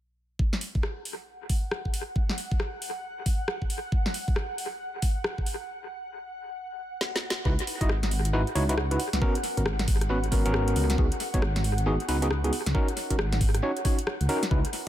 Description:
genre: UK garage, two-step garage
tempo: 136 BPM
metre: 4/4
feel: swing 62% on 16ths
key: unclear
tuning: A4 = 440 Hz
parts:
  - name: ethereal airy pad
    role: sustained chords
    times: 1.2-14.9 s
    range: F#5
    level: -38 LUFS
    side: equal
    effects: ensemble chorus, built-in reverb, sidechain pumping
  - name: electronic kick drum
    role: drums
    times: 0.4-14.6 s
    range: none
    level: -26 LUFS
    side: equal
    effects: none
  - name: garage drum kit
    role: drums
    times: 0.5-14.8 s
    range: hi-hat, rim click, snare drum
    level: -32 LUFS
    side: left 1 dB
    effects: dub echo
  - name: overdriven tine electric piano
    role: stabs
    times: 7.5-14.6 s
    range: B3 to D#5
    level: -29 LUFS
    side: equal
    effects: tape echo
  - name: dark detuned saw bass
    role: bass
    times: 7.5-14.6 s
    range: G#1 to C#2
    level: -27 LUFS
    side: equal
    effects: none
room: light reverb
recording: echo-heavy mix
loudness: -25 LUFS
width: side -12 dB against mid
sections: 0.4-7.5 A section; 7.5-14.9 B section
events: filter sweep on ambient pad 0.4-7.5; break 5.7-7.5; drum fill 7.0-7.5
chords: 0.4 N.C.; 7.5 C#m11; 9.0 G#m11; 11.0 G#m7; 12.5 D#m7

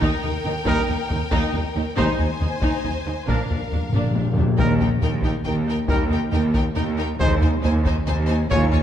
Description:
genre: cinematic, epic orchestral film score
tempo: 138 BPM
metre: 3/4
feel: straight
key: Eb major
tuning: A4 = 439 Hz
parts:
  - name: clear symphonic violin section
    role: melody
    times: 0.0-8.8 s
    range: F5 to Ab5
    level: -33 LUFS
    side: left 4 dB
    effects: none
  - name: clear symphonic violin section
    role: second line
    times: 0.0-8.8 s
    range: Bb4 to Db5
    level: -32 LUFS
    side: left 2 dB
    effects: none
  - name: rich symphonic viola section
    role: accompaniment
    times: 0.0-8.8 s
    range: D4 to F4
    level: -30 LUFS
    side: equal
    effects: none
  - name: bright symphonic double bass section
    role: bass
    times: 0.0-8.8 s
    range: Bb1 to Eb2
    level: -26 LUFS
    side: right 2 dB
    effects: none
  - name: rich symphonic cello section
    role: bass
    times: 0.0-8.8 s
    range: Eb2 to Bb2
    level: -26 LUFS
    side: right 1 dB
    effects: none
  - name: taiko ensemble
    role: drums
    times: 0.0-8.8 s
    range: none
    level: -24 LUFS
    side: equal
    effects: none
  - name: mellow French horn section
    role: sustained chords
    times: 0.7-8.7 s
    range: F3 to F4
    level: -32 LUFS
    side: left 5 dB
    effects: none
  - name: mellow trumpet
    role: stabs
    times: 0.7-8.7 s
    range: Bb4 to Db5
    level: -29 LUFS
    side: right 1 dB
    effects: none
  - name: timpani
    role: percussion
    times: 2.0-4.6, 7.2-8.8 s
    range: Bb2 to Eb3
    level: -26 LUFS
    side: left 2 dB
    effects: none
room: moderate scoring stage reverb, RT60 2.0 s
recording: dark, warm production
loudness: -19 LUFS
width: side -10 dB against mid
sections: 0.0-4.6 A section; 4.6-8.8 A section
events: timpani fill 3.3-4.6; drum fill 3.9-4.6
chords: 0.0 Eb; 2.0 Ab/Eb; 3.3 Bb; 4.6 Eb; 7.2 Ab/Eb

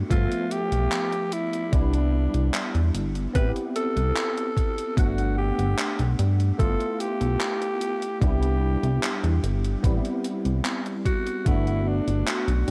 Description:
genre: vaporwave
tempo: 74 BPM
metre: 4/4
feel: straight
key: G major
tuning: A4 = 441 Hz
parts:
  - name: bell-like tine electric piano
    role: accompaniment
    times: 0.0-12.7 s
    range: F3 to F#5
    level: -32 LUFS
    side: equal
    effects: ensemble chorus, vintage 12-bit sampler grit, tape echo
  - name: chorused synth bass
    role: bass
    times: 0.0-12.7 s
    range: G1 to G2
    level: -26 LUFS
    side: equal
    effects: none
  - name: growling alto saxophone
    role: melody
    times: 0.1-12.7 s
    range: D4 to B4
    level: -32 LUFS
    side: equal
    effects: vintage 12-bit sampler grit, tape echo
  - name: electronic kick drum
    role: drums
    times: 0.1-11.6 s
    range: none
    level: -26 LUFS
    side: equal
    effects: overdrive
  - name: gated 80s digital drum machine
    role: drums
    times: 0.1-12.7 s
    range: handclaps, hi-hat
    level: -34 LUFS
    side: equal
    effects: gated reverb, overdrive
room: light reverb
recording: cassette tape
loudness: -25 LUFS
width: mono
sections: 0.0-12.7 A section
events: none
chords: 0.1 G13; 1.7 Cmaj9; 3.4 Am9; 5.0 Gmaj9; 6.6 G13; 8.2 Cmaj9; 9.8 Am9 (rootless); 11.5 Gmaj9

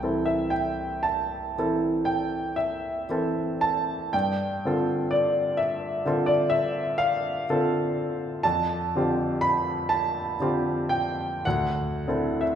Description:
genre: classical, impressionist solo piano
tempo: 28-43 BPM (dotted quarters)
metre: 9/8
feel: rubato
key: C major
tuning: A4 = 439 Hz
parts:
  - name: clear baby grand piano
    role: solo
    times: 0.0-12.6 s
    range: C2 to B5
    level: -23 LUFS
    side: equal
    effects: none
room: wet recital hall reverb, RT60 1.9 s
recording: heard from further back in the room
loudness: -23 LUFS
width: side -9 dB against mid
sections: 0.0-12.6 A section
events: none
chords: 0.0 C6; 4.1 G9sus4; 8.4 F69; 11.4 D9

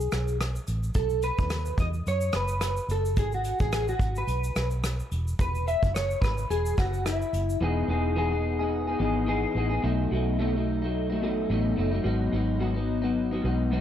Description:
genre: indie pop, bedroom pop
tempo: 108 BPM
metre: 4/4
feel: swing 55% on 16ths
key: E major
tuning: A4 = 440 Hz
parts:
  - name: electric guitar through a small old amp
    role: accompaniment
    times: 0.0-13.8 s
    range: G#2 to E5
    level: -27 LUFS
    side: left 1 dB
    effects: analog chorus, warbly pitch drift
  - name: vintage muted fingered electric bass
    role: bass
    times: 0.0-13.8 s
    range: E1 to F#2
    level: -29 LUFS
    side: equal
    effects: none
  - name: unplugged drum kit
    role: drums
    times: 0.0-7.6 s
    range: hi-hat, kick drum, rim click, shaker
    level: -30 LUFS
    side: equal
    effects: none
room: light reverb, small room ambience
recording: dark, warm production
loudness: -24 LUFS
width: side -10 dB against mid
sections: 0.0-7.6 A section; 7.6-13.8 B section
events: clean electric guitar solo 0.0-7.6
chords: 0.0 E (rootless); 1.0 B; 3.2 G#m; 5.1 E; 7.6 Emaj7; 9.8 B7; 12.1 G#m7

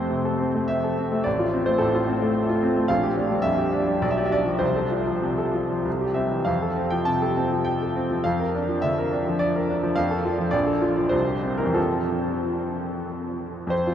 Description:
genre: classical, romantic character piece for solo piano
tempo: 89-110 BPM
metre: 3/4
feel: rubato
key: F major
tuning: A4 = 437 Hz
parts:
  - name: bright grand piano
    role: solo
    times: 0.0-13.9 s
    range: A1 to A5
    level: -21 LUFS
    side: equal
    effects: none
room: wet huge ambient reverb, RT60 7.9 s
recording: in a vast, echoing space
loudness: -21 LUFS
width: side -9 dB against mid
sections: 0.0-13.7 A section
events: none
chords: 0.0 F; 1.3 F/A; 2.9 Gm7/Bb; 4.0 G7/B; 4.6 F/C; 5.9 C; 6.5 F; 8.3 Bb/F; 10.0 F; 10.5 Bbmaj7; 11.1 C; 11.8 F

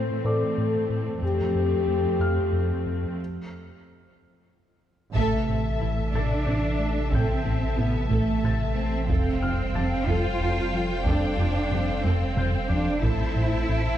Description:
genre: cinematic, hybrid orchestral and electronic film score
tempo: 61 BPM (dotted quarters)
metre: 6/8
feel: straight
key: A minor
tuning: A4 = 441 Hz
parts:
  - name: clear symphonic viola section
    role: accompaniment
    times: 0.0-14.0 s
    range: A3 to E5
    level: -34 LUFS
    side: right 2 dB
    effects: none
  - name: hollow soft pad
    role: sustained chords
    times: 0.0-14.0 s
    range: C3 to E5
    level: -34 LUFS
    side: equal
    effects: chorus
  - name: warm French horn section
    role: sustained chords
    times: 0.0-3.2 s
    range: G4 to C5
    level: -27 LUFS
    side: left 5 dB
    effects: none
  - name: round analog bass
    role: riff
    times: 0.0-13.9 s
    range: F2 to A3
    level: -28 LUFS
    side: left 1 dB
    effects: none
  - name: rich symphonic cello section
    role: bass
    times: 0.0-14.0 s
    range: F2 to F4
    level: -29 LUFS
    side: right 3 dB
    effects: none
  - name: dark concert grand piano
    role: texture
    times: 0.0-14.0 s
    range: D5 to A6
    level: -40 LUFS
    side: left 2 dB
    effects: tape echo
  - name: warm symphonic violin section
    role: second line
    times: 5.1-14.0 s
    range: E5 to A5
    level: -34 LUFS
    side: left 4 dB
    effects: none
  - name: clear symphonic double bass section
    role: bass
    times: 5.1-13.8 s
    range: F1 to A1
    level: -32 LUFS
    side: right 4 dB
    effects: none
  - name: warm sub bass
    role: bass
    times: 5.1-14.0 s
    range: F1 to A1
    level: -30 LUFS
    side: equal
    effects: none
  - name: taiko ensemble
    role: drums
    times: 5.2-13.6 s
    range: none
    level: -31 LUFS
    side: right 1 dB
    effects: none
room: moderate concert hall reverb, RT60 2.1 s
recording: dark, warm production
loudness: -22 LUFS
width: side -11 dB against mid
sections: 0.0-5.2 A section; 5.2-14.0 B section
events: break 3.2-5.2; band accent 5.2-5.8; drum fill 12.0-13.0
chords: 0.0 Am; 1.2 Fadd9; 3.2 N.C.; 5.2 Am; 9.1 Fadd9; 13.0 Am

